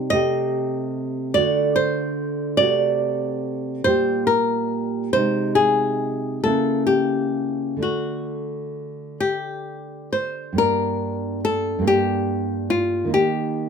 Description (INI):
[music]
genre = romantic duo for nylon-string guitar and classical guitar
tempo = 42-49 BPM (dotted quarters)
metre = 6/8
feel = rubato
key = G minor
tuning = A4 = 439 Hz
[part]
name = nylon-string guitar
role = accompaniment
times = 0.0-13.7 s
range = G2 to G4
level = -24 LUFS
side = right 1 dB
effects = none
[part]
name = flamenco guitar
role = melody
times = 0.1-13.7 s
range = F4 to Eb5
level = -21 LUFS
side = left 1 dB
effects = none
[sound]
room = little or no reverb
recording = close, detailed microphones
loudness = -19 LUFS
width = side -6 dB against mid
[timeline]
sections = 0.0-10.6 A section; 10.6-13.7 B section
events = none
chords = 0.1 Am7b5/C; 1.4 D; 2.6 D7/C; 3.9 Gm/Bb; 5.1 Ab/C; 6.5 C#dim7; 7.8 D; 10.6 Gm; 13.1 Eb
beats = | 0.12 1.36 | 2.60 3.87 | 5.14 6.45 | 7.82 9.21 | 10.59 11.87 | 13.13